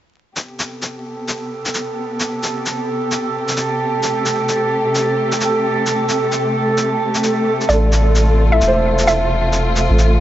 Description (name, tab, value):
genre	future garage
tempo	131 BPM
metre	4/4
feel	swing 62% on 16ths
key	A minor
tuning	A4 = 440 Hz
part	rich studio string section	sustained chords	0.4-10.2 s	C3 to G4	-21 LUFS	left 1 dB	vintage 12-bit sampler grit
part	shaker	drums	0.4-10.1 s	none	-24 LUFS	left 1 dB	none
part	drifting glass-harmonics texture	texture	1.1-10.2 s	A4	-21 LUFS	right 3 dB	chorus, built-in reverb
part	hollow square pluck	melody	7.7-9.3 s	D5 to E5	-19 LUFS	equal	chorus, analog delay
part	felt-muted upright piano	accompaniment	7.7-10.2 s	A4 to E5	-22 LUFS	equal	analog delay
part	soft dub sub bass	bass	7.7-10.2 s	E1 to A1	-15 LUFS	equal	none
room	moderate huge ambient reverb, RT60 7.2 s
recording	vinyl crackle, nothing above 7.9 kHz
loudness	-15 LUFS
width	side -12 dB against mid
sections	0.4-10.2 A section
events	fade-in on string section 0.4-10.2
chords	0.4 Am9; 7.7 F